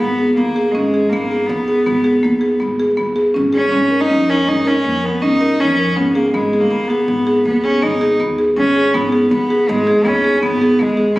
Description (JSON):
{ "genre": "contemporary instrumental, chamber music in an uneven meter", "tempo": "161 BPM", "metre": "7/4", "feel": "straight", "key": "G# dorian", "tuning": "A4 = 440 Hz", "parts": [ { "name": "rich cello", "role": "melody", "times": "0.0-11.2 s", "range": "G#3 to D#4", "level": "-17 LUFS", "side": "equal", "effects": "none" }, { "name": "buzzing marimba with medium mallets", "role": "arpeggios", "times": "0.0-11.2 s", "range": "A#3 to A#4", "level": "-16 LUFS", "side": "equal", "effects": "none" }, { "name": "upright bass", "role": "bass", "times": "0.0-11.2 s", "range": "G#1 to E#2", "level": "-26 LUFS", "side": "equal", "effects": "none" } ], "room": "moderate recital hall reverb, RT60 1.5 s", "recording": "recorded on a phone in the room, club reverb, compression", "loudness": "-13 LUFS", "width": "side -19 dB against mid", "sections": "0.0-8.9 A section; 8.9-11.2 B section", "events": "none", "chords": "0.0 G#madd9; 3.7 A#m/G#; 6.3 G#m" }